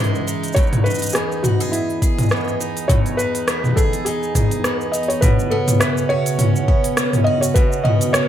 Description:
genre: folktronica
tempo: 103 BPM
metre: 4/4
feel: swing 56% on 16ths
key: unclear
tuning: A4 = 440 Hz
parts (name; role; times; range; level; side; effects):
- felt-muted upright piano; melody; 0.0-8.3 s; E4 to D#5; -23 LUFS; equal; digital delay
- warbly tape-like pad; sustained chords; 0.0-8.3 s; C#3 to D#5; -25 LUFS; equal; chorus, built-in reverb
- picked steel-string acoustic guitar; arpeggios; 0.0-8.3 s; E2 to G#4; -26 LUFS; right 1 dB; digital delay
- organic electronic drum kit; drums; 0.0-8.3 s; hi-hat, rim click, shaker, toms; -20 LUFS; equal; none
- electronic kick drum; drums; 0.6-7.7 s; none; -17 LUFS; equal; overdrive
- vibraphone with soft mallets; second line; 5.2-8.3 s; C#5 to E5; -28 LUFS; right 8 dB; digital delay
room: light reverb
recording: none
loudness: -16 LUFS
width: side -10 dB against mid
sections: 0.0-5.2 A section; 5.2-8.3 B section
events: none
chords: 0.0 C#madd9; 0.6 Emaj7; 5.2 Bsus2

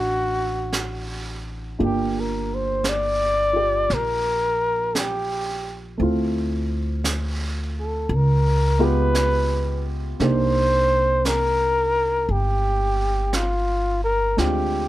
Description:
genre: jazz ballad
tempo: 57 BPM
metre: 4/4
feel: swing 66% on 8ths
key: C minor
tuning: A4 = 441 Hz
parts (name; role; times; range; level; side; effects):
- breathy flugelhorn; melody; 0.0-14.9 s; F4 to D5; -22 LUFS; equal; none
- warm concert grand piano; accompaniment; 0.0-14.9 s; Ab3 to G4; -27 LUFS; right 1 dB; none
- upright bass; bass; 0.0-14.9 s; G1 to D2; -24 LUFS; equal; none
- jazz brush drum kit; drums; 0.7-14.9 s; brushed snare drum, hi-hat, snare drum; -31 LUFS; right 3 dB; none
room: little or no reverb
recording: close, detailed microphones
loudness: -19 LUFS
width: side -15 dB against mid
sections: 0.0-14.9 A section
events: none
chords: 0.0 D7; 1.8 Gm7; 6.0 Dm7; 8.1 Db7#11; 10.2 Cm9; 14.4 Dm7b5

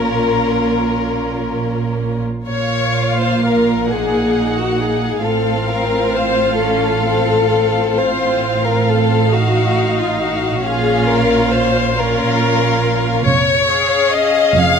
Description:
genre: classical, slow romantic movement for string orchestra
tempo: 45 BPM (dotted quarters)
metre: 6/8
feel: uneven beats, rubato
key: Bb minor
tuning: A4 = 442 Hz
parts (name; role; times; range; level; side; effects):
- rich chamber violin section; melody; 0.0-14.8 s; Bb4 to Gb5; -22 LUFS; left 5 dB; none
- warm chamber violin section; second line; 0.0-14.8 s; F4 to F5; -17 LUFS; left 4 dB; none
- rich chamber viola section; accompaniment; 0.0-14.8 s; Bb3 to Ab4; -21 LUFS; right 2 dB; none
- dark chamber cello section; bass; 0.0-14.8 s; F2 to Bb2; -22 LUFS; right 4 dB; none
- dark chamber double bass section; bass; 0.0-14.8 s; F1 to Bb1; -23 LUFS; right 5 dB; none
room: light reverb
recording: close, detailed microphones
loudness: -13 LUFS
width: side -6 dB against mid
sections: 0.0-2.5 A section; 2.5-14.8 B section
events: none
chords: 0.0 Bbm; 2.5 Bb5; 5.2 F/A; 8.0 F7/A; 10.6 Bbm; 13.2 Db/F

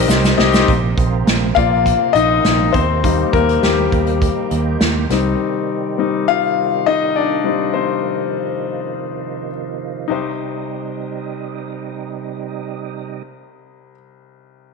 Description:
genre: piano-driven pop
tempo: 102 BPM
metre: 4/4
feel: straight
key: unclear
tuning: A4 = 439 Hz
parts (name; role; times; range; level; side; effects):
- clear concert grand piano; accompaniment; 0.0-14.7 s; C2 to F5; -17 LUFS; left 9 dB; none
- tonewheel organ; sustained chords; 0.0-13.2 s; C3 to G4; -26 LUFS; right 11 dB; overdrive, chorus vibrato, slow rotary speaker
- picked electric bass; bass; 0.0-5.3 s; Bb1 to Eb2; -19 LUFS; right 2 dB; none
- unplugged drum kit; drums; 0.1-5.2 s; hi-hat, kick drum, snare drum; -18 LUFS; right 1 dB; none
- tube shaker; percussion; 0.1-0.7 s; none; -32 LUFS; right 16 dB; none
room: moderate echo chamber reverb, RT60 1.8 s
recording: 1960s-style stereo with parts hard left and right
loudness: -15 LUFS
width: side -4 dB against mid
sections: 0.7-10.1 A section; 10.1-12.5 B section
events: drum fill 0.1-0.7; grand piano solo 0.7-10.1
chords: 0.0 Cm; 0.7 Bbadd9; 2.7 Eb; 5.1 Cm

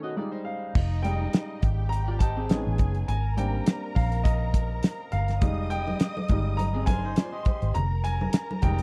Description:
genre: lush 1970s-style soul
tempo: 103 BPM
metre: 4/4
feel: swing 54% on 16ths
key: F dorian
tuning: A4 = 440 Hz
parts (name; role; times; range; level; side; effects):
- warm grand piano; accompaniment; 0.0-8.8 s; D#3 to Bb5; -35 LUFS; equal; none
- electric guitar at the edge of break-up; riff; 0.0-2.6, 6.7-7.7 s; C4 to D#5; -38 LUFS; equal; lush chorus
- muted studio string section; second line; 0.7-8.8 s; Eb4 to Eb6; -40 LUFS; equal; none
- vintage muted fingered electric bass; bass; 0.8-8.8 s; F1 to Bb1; -29 LUFS; equal; none
- cloth-damped thuddy drum kit; drums; 0.8-8.8 s; crash cymbal, hi-hat, kick drum, snare drum; -26 LUFS; equal; none
- congas; percussion; 5.4-8.8 s; none; -36 LUFS; equal; none
room: little or no reverb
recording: dry, close 1970s-style studio recording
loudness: -26 LUFS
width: mono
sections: 0.8-8.8 A section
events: stop 0.0-0.8; grand piano solo 0.8-8.8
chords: 0.2 Fm7; 0.8 Fm9; 2.5 Amaj9#11; 3.1 Abmaj9#11; 5.4 Fm9

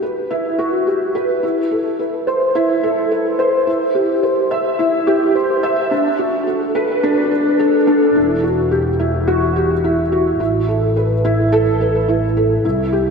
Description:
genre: piano and strings electronica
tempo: 107 BPM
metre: 4/4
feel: straight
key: E minor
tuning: A4 = 440 Hz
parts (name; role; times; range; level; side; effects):
- felt-muted upright piano; riff; 0.0-13.1 s; D4 to E5; -15 LUFS; equal; ensemble chorus, ping-pong delay
- rich chamber double bass section; bass; 8.2-13.1 s; E1 to C2; -20 LUFS; equal; tube saturation
room: wet lush hall reverb, RT60 2.7 s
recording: dreamy mix soaked in reverb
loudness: -14 LUFS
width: side -5 dB against mid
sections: 0.0-8.2 A section; 8.2-13.1 B section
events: build-up 0.0-8.2; drop 8.2-13.1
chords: 0.0 Emadd9; 1.4 Amadd9; 3.7 C; 5.9 Bm7; 8.2 Emadd9; 10.4 Asus2

